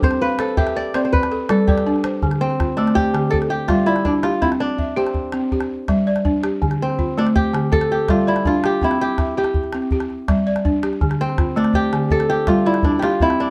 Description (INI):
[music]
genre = west african traditional, West African string and xylophone music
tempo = 109 BPM (dotted quarters)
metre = 12/8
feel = straight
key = unclear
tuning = A4 = 440 Hz
[part]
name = kora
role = melody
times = 0.0-13.5 s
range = C4 to D5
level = -23 LUFS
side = equal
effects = none
[part]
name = balafon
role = arpeggios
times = 0.0-13.5 s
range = D3 to G5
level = -22 LUFS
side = equal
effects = none
[part]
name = calabash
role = percussion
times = 0.0-13.4 s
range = none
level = -25 LUFS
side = equal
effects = none
[sound]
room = moderate small room ambience, RT60 0.5 s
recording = dark, warm production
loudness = -19 LUFS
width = mono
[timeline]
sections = 0.0-2.2 A section; 2.2-13.5 B section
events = kora solo 0.0-2.2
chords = 0.0 C; 1.1 G; 2.2 Dm; 3.3 G5; 4.4 C; 5.5 G5; 6.6 Dm; 7.7 G5; 8.8 C; 9.9 G5; 11.0 Dm; 12.1 G5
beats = | 0.03 0.58 1.13 1.68 | 2.22 2.77 3.32 3.87 | 4.42 4.97 5.52 6.07 | 6.62 7.17 7.72 8.27 | 8.82 9.37 9.92 10.47 | 11.02 11.57 12.12 12.67 | 13.22